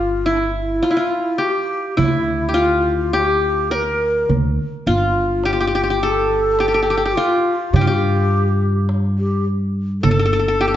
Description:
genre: Turkish makam ensemble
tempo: 104 BPM (eighths)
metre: 10/8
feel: straight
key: G makam nikriz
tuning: A4 = 441 Hz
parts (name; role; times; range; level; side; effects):
- qanun; melody; 0.0-10.8 s; E4 to Bb4; -19 LUFS; left 1 dB; slapback echo
- breathy low ney; second line; 0.0-10.8 s; D4 to C#5; -21 LUFS; left 1 dB; none
- upright bass; bass; 0.0-10.8 s; G1 to G2; -20 LUFS; equal; none
- darbuka; percussion; 0.8-10.3 s; none; -23 LUFS; right 3 dB; none
room: moderate recital hall reverb, RT60 1.5 s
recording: nothing above 7.7 kHz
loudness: -16 LUFS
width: side -11 dB against mid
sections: 0.0-10.8 A section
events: none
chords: none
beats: 0.26 0.83 1.41 1.99 2.56 3.14 3.71 | 4.29 4.87 5.44 6.02 6.59 7.17 7.74 8.32 8.89 9.47 | 10.04 10.62

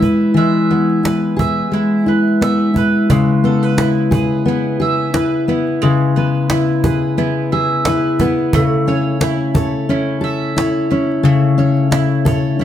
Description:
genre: acoustic pop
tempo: 88 BPM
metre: 4/4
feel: swing 55% on 16ths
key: C# minor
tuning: A4 = 441 Hz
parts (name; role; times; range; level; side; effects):
- fingerpicked steel-string acoustic guitar; accompaniment; 0.0-12.6 s; C#3 to A4; -14 LUFS; left 2 dB; none
- mandolin; arpeggios; 0.0-12.6 s; G#3 to E5; -22 LUFS; right 6 dB; none
- cajon; drums; 0.0-12.6 s; none; -20 LUFS; right 2 dB; none
room: wet studio reverb, RT60 0.8 s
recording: heard from further back in the room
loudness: -13 LUFS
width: side -10 dB against mid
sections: 0.0-3.1 A section; 3.1-12.6 B section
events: none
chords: 0.0 E; 3.1 C#m7; 8.5 A/C#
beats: | 0.37 1.05 1.73 2.42 | 3.10 3.78 4.46 5.14 | 5.82 6.50 7.18 7.86 | 8.54 9.22 9.89 10.57 | 11.25 11.93 12.60

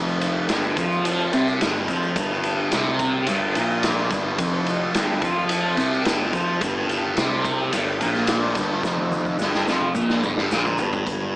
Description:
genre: psychedelic rock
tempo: 108 BPM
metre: 4/4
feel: straight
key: G minor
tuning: A4 = 440 Hz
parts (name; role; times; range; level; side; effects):
- thick fuzz guitar; riff; 0.0-11.4 s; F2 to F3; -23 LUFS; equal; distortion, phaser
- fuzz picked electric bass; bass; 0.0-11.4 s; F1 to F2; -28 LUFS; equal; overdrive
- tube shaker; percussion; 0.1-11.0 s; none; -43 LUFS; left 2 dB; none
- raw garage drum kit; drums; 0.2-11.2 s; hi-hat, kick drum, ride cymbal, snare drum, toms; -23 LUFS; equal; none
room: light reverb, studio reverb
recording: small speaker sound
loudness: -19 LUFS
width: side -21 dB against mid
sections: 0.0-11.1 A section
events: drum fill 8.8-11.1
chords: 0.0 Gm7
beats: 0.49 1.05 1.61 | 2.17 2.72 3.28 3.84 | 4.39 4.95 5.51 6.06 | 6.62 7.17 7.73 8.29 | 8.84 9.40 9.96 10.51 | 11.07

